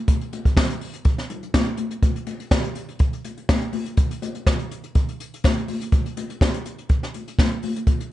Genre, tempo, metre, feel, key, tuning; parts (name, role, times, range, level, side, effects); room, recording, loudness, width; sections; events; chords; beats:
disco; 123 BPM; 4/4; straight
jazz brush drum kit; drums; 0.1-8.1 s; hi-hat, kick drum, snare drum; -20 LUFS; equal
congas; percussion; 0.1-8.0 s; -29 LUFS; left 4 dB
light reverb; nothing above 10.6 kHz; -20 LUFS; side -15 dB against mid
0.0-8.1 A section
| 0.08 0.57 1.06 1.54 | 2.03 2.52 3.00 3.49 | 3.98 4.47 4.95 5.44 | 5.93 6.41 6.90 7.39 | 7.88